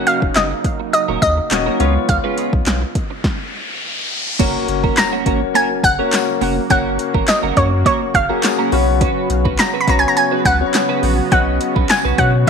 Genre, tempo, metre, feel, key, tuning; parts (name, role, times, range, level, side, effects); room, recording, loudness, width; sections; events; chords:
dance-pop; 104 BPM; 4/4; straight; F# major; A4 = 440 Hz
analog pluck; melody; 0.0-12.5 s; C#5 to B5; -18 LUFS; equal; chorus, tape echo
clear concert grand piano; accompaniment; 0.0-12.5 s; A#3 to D#5; -21 LUFS; left 13 dB; sidechain pumping
sweeping resonant pad; sustained chords; 0.0-12.5 s; C#3 to F#4; -26 LUFS; right 11 dB; chorus, sidechain pumping
twelve-string electric guitar; riff; 0.0-12.5 s; F#3 to B4; -22 LUFS; right 14 dB; analog chorus
deep house drum kit; drums; 0.1-12.5 s; crash cymbal, handclaps, hi-hat, kick drum, snare drum; -20 LUFS; equal; overdrive
warm sub bass; bass; 0.2-12.5 s; D#1 to B2; -20 LUFS; equal; sidechain pumping
riser and impact; sound effects; 2.9-6.7 s; -26 LUFS; left 2 dB
tambourine; percussion; 5.0-12.0 s; -31 LUFS; left 16 dB
light reverb, digital ambience; 1960s-style stereo with parts hard left and right; -14 LUFS; side -6 dB against mid
0.0-4.4 A section; 4.4-12.5 B section
riser 2.9-4.4; stop 3.2-4.4; impact 4.4-6.7
0.0 D#m7; 1.8 C#7; 4.4 F#; 8.7 Bsus2